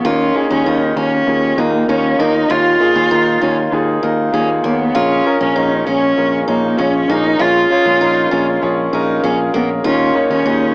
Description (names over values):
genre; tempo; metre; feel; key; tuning
piano-driven pop; 98 BPM; 4/4; straight; unclear; A4 = 440 Hz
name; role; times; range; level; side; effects
dark cello; melody; 0.0-10.7 s; Bb3 to F4; -15 LUFS; equal; none
clear grand piano; accompaniment; 0.0-10.7 s; Bb2 to Db5; -17 LUFS; equal; none
pedal harmonium; sustained chords; 0.0-10.7 s; Db3 to Bb4; -26 LUFS; equal; none
picked steel-string acoustic guitar; riff; 0.0-10.7 s; Bb3 to F4; -22 LUFS; right 1 dB; none
picked electric bass; bass; 0.1-10.7 s; Bb1 to Eb2; -21 LUFS; equal; none
room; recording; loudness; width
moderate spring reverb, RT60 1.3 s, small room reverb; home recording on cassette, small speaker sound; -12 LUFS; side -28 dB against mid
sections
0.0-10.7 A section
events
none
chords
0.1 Ebsus2; 4.9 Bbm7; 9.8 Ebsus2